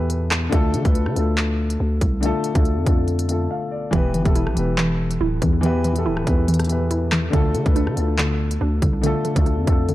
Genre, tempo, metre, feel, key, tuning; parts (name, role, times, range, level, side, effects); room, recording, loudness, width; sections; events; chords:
hip hop, drill; 141 BPM; 4/4; half-time; A4 = 441 Hz
dark concert grand piano; accompaniment; 0.0-9.9 s; D3 to F5; -24 LUFS; left 2 dB
growling 808-style bass; bass; 0.0-9.9 s; D1 to D3; -22 LUFS; equal
drill drum kit; drums; 0.1-9.9 s; handclaps, hi-hat, kick drum, rim click; -21 LUFS; equal
hollow square pluck; arpeggios; 3.9-9.9 s; D3 to E4; -24 LUFS; right 1 dB; chorus, tape echo
little or no reverb; dark, warm production; -18 LUFS; side -15 dB against mid
0.0-9.9 A section
break 3.5-3.9
0.0 Em; 0.5 Dm; 3.9 Em; 7.3 Dm